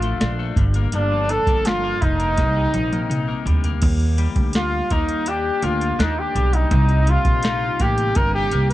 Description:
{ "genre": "indie pop, bedroom pop", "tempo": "83 BPM", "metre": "4/4", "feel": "straight", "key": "unclear", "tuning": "A4 = 444 Hz", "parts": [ { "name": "clear trumpet", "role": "melody", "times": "0.0-8.7 s", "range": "D4 to Bb4", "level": "-22 LUFS", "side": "equal", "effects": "lush chorus, cassette tape" }, { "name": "twelve-string electric guitar", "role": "accompaniment", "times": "0.0-8.7 s", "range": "G2 to Eb4", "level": "-28 LUFS", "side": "left 7 dB", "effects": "wide subtle chorus, vibrato effect, cassette tape" }, { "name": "upright bass", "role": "bass", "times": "0.0-8.7 s", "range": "F1 to Eb2", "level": "-21 LUFS", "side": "equal", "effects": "none" }, { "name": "soft vintage rhythm box", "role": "drums", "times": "0.0-8.7 s", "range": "crash cymbal, hi-hat, kick drum, snare drum, toms", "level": "-22 LUFS", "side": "equal", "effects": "none" } ], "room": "little or no reverb", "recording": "home recording on cassette", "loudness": "-17 LUFS", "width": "side -15 dB against mid", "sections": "0.0-3.8 A section; 3.8-8.7 B section", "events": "drum fill 2.4-3.8; trumpet solo 3.8-8.7", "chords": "0.0 Bbmaj7; 0.6 Gm7; 2.4 Cm7; 3.8 Ebmaj7; 6.7 Cm7" }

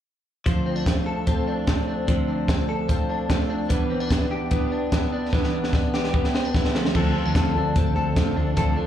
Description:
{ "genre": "jangly indie pop", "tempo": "148 BPM", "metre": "4/4", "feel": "straight", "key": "D dorian", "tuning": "A4 = 440 Hz", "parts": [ { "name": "fingerpicked plugged-in steel-string acoustic guitar", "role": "accompaniment", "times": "0.5-8.9 s", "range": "D3 to C5", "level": "-28 LUFS", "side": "right 4 dB", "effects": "slapback echo" }, { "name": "direct-recorded clean electric guitar", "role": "arpeggios", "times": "0.5-8.9 s", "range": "F3 to A4", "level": "-26 LUFS", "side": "left 3 dB", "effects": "ensemble chorus, digital delay, slapback echo" }, { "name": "compact cocktail drum kit", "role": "drums", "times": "0.5-8.7 s", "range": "crash cymbal, hi-hat, kick drum, snare drum", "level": "-24 LUFS", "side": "equal", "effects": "none" }, { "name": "hollow-body short-scale fingered electric bass", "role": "bass", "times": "6.9-8.7 s", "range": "D2", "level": "-24 LUFS", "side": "equal", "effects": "none" } ], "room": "light reverb, small room ambience", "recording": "live gig heard through the venue's PA, club reverb", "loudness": "-20 LUFS", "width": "side -10 dB against mid", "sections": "0.5-6.9 A section; 6.9-8.9 B section", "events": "drum fill 5.3-6.9", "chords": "0.5 Dm7; 3.7 Em7; 6.7 Dm7" }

